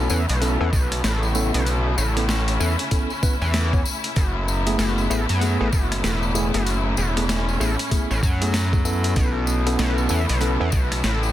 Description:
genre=glitch hop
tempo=96 BPM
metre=4/4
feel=swing 61% on 16ths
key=unclear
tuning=A4 = 440 Hz
part: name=clear studio string section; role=sustained chords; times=0.0-11.3 s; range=A2 to E4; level=-28 LUFS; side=left 1 dB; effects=sidechain pumping
part: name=tine electric piano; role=stabs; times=0.0-10.7 s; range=A3 to C#5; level=-27 LUFS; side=equal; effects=medium stereo tremolo, sidechain pumping, ping-pong delay
part: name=gritty driven synth bass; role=bass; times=0.0-11.3 s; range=E1 to F#2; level=-22 LUFS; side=equal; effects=none
part: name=tambourine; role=percussion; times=0.1-11.3 s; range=none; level=-33 LUFS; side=left 4 dB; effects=none
part: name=boom bap sampler-style drum kit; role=drums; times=0.3-11.2 s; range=hi-hat, rim click, snare drum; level=-28 LUFS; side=equal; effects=studio reverb
part: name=electronic kick drum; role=drums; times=0.7-10.9 s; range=none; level=-21 LUFS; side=equal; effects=studio reverb
room=digital ambience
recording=dense, heavily limited modern master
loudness=-19 LUFS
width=side -13 dB against mid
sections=0.0-11.3 A section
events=none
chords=0.0 B9sus4; 4.2 F#m11; 9.2 B9sus4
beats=0.41 1.04 | 1.67 2.29 2.92 3.54 | 4.17 4.79 5.42 6.04 | 6.67 7.29 7.92 8.54 | 9.16 9.79 10.41 11.04

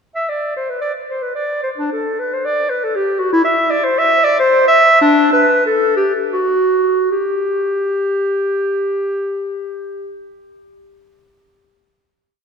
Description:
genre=classical, baroque-style fantasia for unaccompanied clarinet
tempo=73-119 BPM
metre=3/4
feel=rubato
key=G major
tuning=A4 = 442 Hz
part: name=warm clarinet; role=solo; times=0.2-10.1 s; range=D4 to E5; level=-14 LUFS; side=equal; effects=none
room=wet church reverb, RT60 2.9 s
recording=none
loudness=-13 LUFS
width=side -6 dB against mid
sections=0.2-7.1 A section; 7.1-11.6 final note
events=slowing down 2.6-7.1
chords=none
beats=| 0.16 0.69 1.21 | 1.77 2.31 2.82 | 3.33 3.85 4.39 | 4.99 5.64 6.32 | 7.10 7.84 8.59 | 9.35 10.09

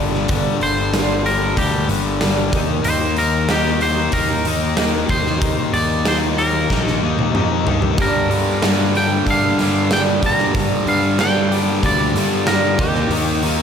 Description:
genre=quiet-loud alternative rock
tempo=94 BPM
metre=4/4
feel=straight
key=G minor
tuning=A4 = 440 Hz
part: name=fingerpicked steel-string acoustic guitar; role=arpeggios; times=0.0-13.6 s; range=G2 to G4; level=-25 LUFS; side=right 4 dB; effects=slapback echo
part: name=cranked stack guitar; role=riff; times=0.0-13.6 s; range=G2 to Eb4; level=-21 LUFS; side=left 9 dB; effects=overdrive, slapback echo
part: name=fuzz fingered electric bass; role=bass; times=0.0-13.6 s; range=G1 to G2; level=-22 LUFS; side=equal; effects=overdrive
part: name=big rock drum kit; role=drums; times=0.1-13.6 s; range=hi-hat, kick drum, snare drum, toms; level=-21 LUFS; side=right 1 dB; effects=none
part: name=twangy electric guitar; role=melody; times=0.6-13.6 s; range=G4 to Bb5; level=-22 LUFS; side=right 1 dB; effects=slapback echo
part: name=thick fuzz guitar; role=riff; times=8.0-13.6 s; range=G2 to Eb4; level=-24 LUFS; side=right 8 dB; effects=distortion, slapback echo
room=moderate concert hall reverb, RT60 2.1 s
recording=big arena sound, faint mains hum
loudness=-15 LUFS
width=side -7 dB against mid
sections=0.0-13.6 A section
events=clean electric guitar solo 0.0-13.6; drum fill 6.7-8.0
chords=0.0 Gm; 2.5 Eb; 8.0 Gm; 12.8 Eb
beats=| 0.29 0.93 1.57 2.21 | 2.85 3.49 4.13 4.77 | 5.42 6.06 6.70 7.34 | 7.98 8.62 9.26 9.90 | 10.55 11.19 11.83 12.47 | 13.12

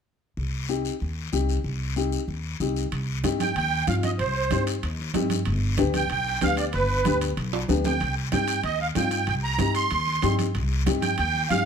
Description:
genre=latin, cumbia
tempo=189 BPM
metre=4/4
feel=straight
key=C harmonic minor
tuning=A4 = 445 Hz
part: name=upright bass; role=bass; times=0.4-11.7 s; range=G1 to G2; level=-27 LUFS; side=equal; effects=none
part: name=guiro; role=percussion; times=0.4-11.7 s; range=none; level=-37 LUFS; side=left 9 dB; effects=none
part: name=dark upright piano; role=accompaniment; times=0.7-11.7 s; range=B3 to G4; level=-28 LUFS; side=left 6 dB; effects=none
part: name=congas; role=percussion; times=2.9-11.7 s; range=none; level=-31 LUFS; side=right 7 dB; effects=none
part: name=timbales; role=percussion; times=2.9-11.7 s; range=none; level=-35 LUFS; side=right 6 dB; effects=none
part: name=musette accordion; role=melody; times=3.4-11.7 s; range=B4 to C6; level=-26 LUFS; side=right 5 dB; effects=slapback echo, plate reverb
room=moderate studio reverb, RT60 0.9 s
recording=none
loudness=-23 LUFS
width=side -7 dB against mid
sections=0.4-2.9 A section; 2.9-11.7 B section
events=drum fill 7.5-8.0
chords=0.4 Cm; 5.5 G; 8.0 Cm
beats=| 0.37 0.69 1.01 1.33 | 1.65 1.97 2.28 2.60 | 2.92 3.24 3.56 3.87 | 4.19 4.51 4.83 5.14 | 5.46 5.78 6.10 6.42 | 6.74 7.05 7.37 7.69 | 8.01 8.32 8.64 8.96 | 9.28 9.60 9.92 10.23 | 10.55 10.87 11.19 11.51

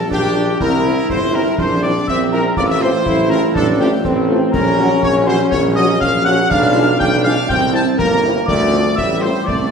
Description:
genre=military-style march for wind band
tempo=122 BPM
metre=2/4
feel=straight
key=F major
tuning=A4 = 439 Hz
part: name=mellow wooden piccolo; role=second line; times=0.0-9.7 s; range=G5 to A6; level=-23 LUFS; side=left 2 dB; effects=none
part: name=warm woodwind section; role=second line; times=0.0-9.7 s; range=G4 to A5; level=-22 LUFS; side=left 1 dB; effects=none
part: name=clear trombone section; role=sustained chords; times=0.0-9.7 s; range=G3 to F4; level=-18 LUFS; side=right 1 dB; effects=none
part: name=clear tuba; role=bass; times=0.0-9.7 s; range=G1 to D2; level=-18 LUFS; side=right 2 dB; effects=none
part: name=bright trumpet section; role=melody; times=0.1-9.7 s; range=G4 to A5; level=-22 LUFS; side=equal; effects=none
part: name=concert snare drum, concert bass drum and clash cymbals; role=drums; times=0.1-9.7 s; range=none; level=-24 LUFS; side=equal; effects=none
part: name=dark French horn section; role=accompaniment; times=0.3-9.3 s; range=F3 to Gb4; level=-23 LUFS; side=left 3 dB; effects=none
room=wet recital hall reverb, RT60 1.5 s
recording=heard from further back in the room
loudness=-13 LUFS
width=side -6 dB against mid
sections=0.0-9.7 A section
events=none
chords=0.0 Gm7/Bb; 0.6 C; 1.6 C7/Bb; 2.6 F/A; 4.5 Gb/Bb; 6.5 Bdim7; 7.5 C7; 8.5 Dm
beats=0.11 | 0.60 1.09 | 1.59 2.08 | 2.57 3.06 | 3.56 4.05 | 4.54 5.03 | 5.53 6.02 | 6.51 7.00 | 7.50 7.99 | 8.48 8.97 | 9.47

